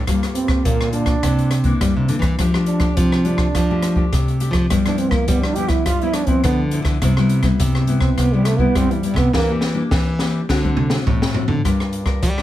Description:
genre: samba and choro.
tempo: 104 BPM.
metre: 4/4.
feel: straight.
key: unclear.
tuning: A4 = 440 Hz.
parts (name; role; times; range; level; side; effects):
nylon-string guitar; accompaniment; 0.0-12.4 s; G2 to Bb4; -22 LUFS; left 4 dB; none.
nylon-string guitar; bass; 0.0-12.4 s; G2 to G3; -21 LUFS; equal; none.
open jazz drum kit; drums; 0.1-12.4 s; hi-hat, kick drum, rim click, snare drum, toms; -20 LUFS; equal; none.
dark trombone; second line; 0.3-9.5 s; E3 to G4; -21 LUFS; right 4 dB; none.
room: wet studio reverb, RT60 0.6 s.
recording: heard from further back in the room.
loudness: -16 LUFS.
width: side -13 dB against mid.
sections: 0.0-11.6 A section.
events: trombone solo 0.0-11.6; drum fill 9.3-11.6.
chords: 0.1 Gm9; 1.2 C9; 2.4 F69; 4.7 G6; 7.0 Cmaj7; 9.3 Em7b5; 10.5 D7; 11.6 Gm7.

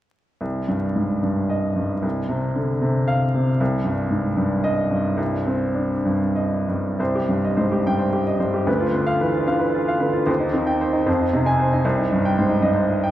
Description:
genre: classical, romantic character piece for solo piano.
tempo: 59-80 BPM (dotted quarters).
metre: 6/8.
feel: rubato.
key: C minor.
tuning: A4 = 439 Hz.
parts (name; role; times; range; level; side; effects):
bright baby grand piano; solo; 0.4-13.1 s; C2 to Ab5; -19 LUFS; equal; none.
room: wet recital hall reverb, RT60 1.8 s.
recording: heard from further back in the room, vinyl crackle.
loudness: -19 LUFS.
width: side -13 dB against mid.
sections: 0.4-7.0 A section; 7.0-13.1 B section.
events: none.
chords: 0.4 Cm; 2.0 F5/C; 3.6 Cm; 8.7 Bdim/D; 10.3 Cm/Eb; 11.1 Fm7; 11.8 Cm.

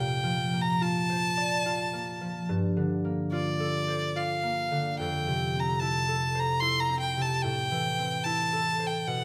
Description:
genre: classical, impressionist duo for violin and harp.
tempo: 72 BPM.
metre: 3/4.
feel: rubato.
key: unclear.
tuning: A4 = 440 Hz.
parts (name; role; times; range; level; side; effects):
clear violin; melody; 0.0-9.2 s; D5 to C6; -31 LUFS; equal; none.
concert harp; accompaniment; 0.0-9.2 s; F2 to F5; -32 LUFS; equal; none.
room: light reverb.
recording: close, detailed microphones.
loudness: -28 LUFS.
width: mono.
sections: 0.0-9.2 A section.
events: none.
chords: 0.0 Bbmaj9; 2.5 Gm11; 5.0 Fmaj7; 7.4 Am7.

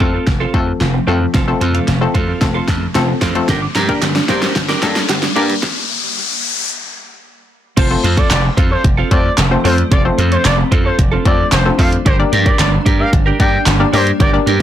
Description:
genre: dance-pop.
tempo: 112 BPM.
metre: 4/4.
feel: straight.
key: F major.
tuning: A4 = 440 Hz.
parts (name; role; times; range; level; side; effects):
hollow square pluck; accompaniment; 0.0-14.6 s; A3 to D5; -19 LUFS; left 5 dB; chorus, sidechain pumping.
granular cloud pad; sustained chords; 0.2-14.6 s; C3 to D4; -26 LUFS; equal; built-in reverb, sidechain pumping.
wide unison pluck; arpeggios; 0.0-5.6 s; F3 to G6; -26 LUFS; right 2 dB; sidechain pumping, tape echo.
twelve-string electric guitar; riff; 0.0-14.6 s; C4 to Bb4; -21 LUFS; right 5 dB; wide subtle chorus.
slap bass; bass; 0.0-14.6 s; F1 to G2; -17 LUFS; equal; sidechain pumping.
pop drum kit; drums; 0.0-14.6 s; crash cymbal, handclaps, hi-hat, kick drum, snare drum; -16 LUFS; equal; soft clipping on snare.
riser; sound effects; 2.6-6.7 s; none; -23 LUFS; left 5 dB; none.
group handclap; percussion; 4.0-13.8 s; none; -24 LUFS; right 12 dB; none.
expressive portamento lead; melody; 7.8-14.3 s; C5 to G5; -20 LUFS; equal; chorus, sidechain pumping, tape echo.
room: light reverb.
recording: blown-out, overdriven recording, overdrive, high-pass filter.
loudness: -12 LUFS.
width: side -11 dB against mid.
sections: 0.0-7.8 A section; 7.8-14.6 B section.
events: build-up 0.0-7.8; drum fill 0.0-5.6; filter sweep 0.0-7.8; riser 2.6-7.8; stop 5.6-7.8; drop 7.8-14.6.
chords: 0.0 F; 3.5 Gm; 7.8 F; 12.1 Gm.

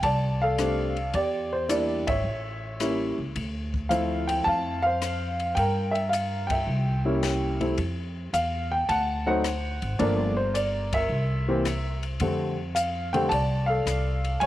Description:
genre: jazz piano trio.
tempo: 108 BPM.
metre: 4/4.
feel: swing 69% on 8ths.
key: F major.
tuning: A4 = 439 Hz.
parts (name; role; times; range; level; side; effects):
warm upright piano; melody; 0.0-14.5 s; D3 to A5; -25 LUFS; equal; none.
upright bass; bass; 0.0-14.5 s; G1 to G2; -29 LUFS; equal; none.
compact cocktail drum kit; drums; 0.0-14.5 s; hi-hat, kick drum, ride cymbal, rim click, snare drum; -36 LUFS; left 3 dB; none.
room: light reverb, studio reverb.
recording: 1960s-style stereo.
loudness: -24 LUFS.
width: side -14 dB against mid.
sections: 0.0-14.5 A section.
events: band accent 2.0, 6.4, 10.8.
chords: 0.0 F6; 1.1 Em7b5; 2.3 A7b9; 3.4 Dm9; 5.6 Gm; 6.7 C7b9; 7.8 N.C.; 8.9 D7; 10.0 Gm7; 11.1 C7; 12.2 F6.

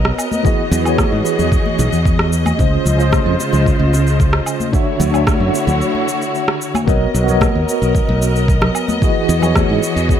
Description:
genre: sunset chillout.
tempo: 112 BPM.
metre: 4/4.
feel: straight.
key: B major.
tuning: A4 = 443 Hz.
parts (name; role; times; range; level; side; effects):
bright tine electric piano; accompaniment; 0.0-10.2 s; C#3 to E5; -19 LUFS; equal; medium stereo tremolo, auto-pan, tape echo.
warm symphonic string section; sustained chords; 0.0-10.2 s; C#3 to D#5; -21 LUFS; left 1 dB; none.
modern bright fingered electric bass; bass; 0.0-10.1 s; B1 to G#2; -16 LUFS; equal; none.
electronic rim click, woodblock and cabasa; drums; 0.1-10.2 s; none; -22 LUFS; right 1 dB; none.
congas and bongos; percussion; 0.3-9.7 s; none; -24 LUFS; left 2 dB; none.
electronic kick drum; drums; 0.4-10.2 s; none; -16 LUFS; equal; overdrive.
room: light reverb.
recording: none.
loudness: -13 LUFS.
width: side -9 dB against mid.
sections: 0.0-6.9 A section; 6.9-10.2 A section.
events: break 5.8-6.9.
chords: 0.4 Emaj9; 2.6 C#maj9; 4.7 Dmaj9; 6.9 Bmaj9; 9.0 Emaj9.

